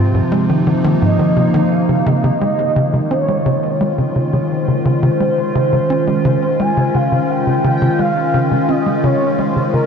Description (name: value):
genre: ambient, sequencer-driven space music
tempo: 86 BPM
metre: 4/4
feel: straight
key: Db lydian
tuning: A4 = 436 Hz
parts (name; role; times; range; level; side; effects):
- evolving wavetable pad; sustained chords; 0.0-9.9 s; C3 to F4; -17 LUFS; equal; chorus, built-in reverb
- tight sequencer bass; riff; 0.0-9.9 s; Ab2 to Db4; -17 LUFS; equal; lush chorus, tape echo
- wind-like tuned noise texture; texture; 0.0-1.7 s; C4 to C5; -33 LUFS; right 2 dB; none
- expressive synth lead; melody; 1.0-9.9 s; Bb4 to Ab5; -19 LUFS; equal; ensemble chorus, cassette tape, tape echo
room: wet huge ambient reverb, RT60 8.1 s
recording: dark, warm production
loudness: -13 LUFS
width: side -6 dB against mid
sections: 0.0-1.7 A section; 1.7-9.9 B section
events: none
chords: 0.0 Ab; 1.7 Dbmaj7